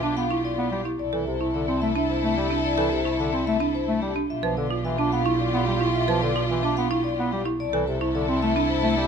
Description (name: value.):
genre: classical, minimalist pattern music.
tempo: 109 BPM.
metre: 3/4.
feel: straight.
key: C major.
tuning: A4 = 437 Hz.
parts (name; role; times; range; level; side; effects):
vibraphone with medium mallets; melody; 0.0-9.1 s; G4 to F5; -30 LUFS; left 9 dB; none.
clear French horn; second line; 0.0-9.1 s; E4 to F4; -30 LUFS; right 1 dB; none.
warm bass clarinet; accompaniment; 0.0-9.1 s; C3 to D4; -28 LUFS; left 1 dB; none.
clear symphonic string section; sustained chords; 0.0-9.1 s; E4 to A4; -31 LUFS; left 4 dB; none.
folk marimba with medium hard mallets; arpeggios; 0.0-8.7 s; C4 to B4; -28 LUFS; right 4 dB; none.
rich double bass; bass; 0.0-9.1 s; B1 to C2; -30 LUFS; right 3 dB; none.
room: moderate large studio reverb, RT60 1.0 s.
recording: none.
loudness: -22 LUFS.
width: side -6 dB against mid.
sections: 0.0-9.1 A section.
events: none.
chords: 0.0 G7/B; 1.0 C6; 4.3 G7/B; 7.6 C6.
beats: 0.44 | 0.99 1.54 2.09 | 2.64 3.19 3.74 | 4.29 4.84 5.39 | 5.95 6.50 7.05 | 7.60 8.15 8.70.